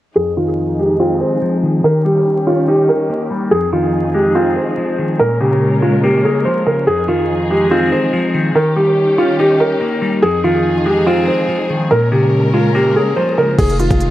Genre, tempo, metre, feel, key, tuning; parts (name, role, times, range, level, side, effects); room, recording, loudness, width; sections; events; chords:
hip hop, trap; 143 BPM; 4/4; half-time; F minor; A4 = 441 Hz
felt-muted upright piano; melody; 0.2-14.1 s; F4 to C5; -15 LUFS; right 1 dB; low-pass filter, dub echo
clean electric guitar; accompaniment; 0.2-13.6 s; F2 to Eb4; -17 LUFS; left 1 dB; phaser, low-pass filter
warm symphonic string section; sustained chords; 0.2-14.1 s; Eb3 to Bb4; -22 LUFS; equal; low-pass filter
distorted 808-style bass; bass; 13.6-14.1 s; F1; -16 LUFS; equal; distortion
trap drum kit; drums; 13.6-14.1 s; crash cymbal, hi-hat, kick drum; -17 LUFS; equal
light reverb, digital ambience; echo-heavy mix, vinyl crackle; -12 LUFS; side -14 dB against mid
0.2-13.6 A section
filter sweep 0.2-13.6
0.2 Fm7; 1.8 Eb7; 3.5 Fm7; 5.2 Bbm7; 6.9 Fm7; 8.6 Eb7; 10.2 Fm7; 11.9 Bbm7; 13.6 Fm7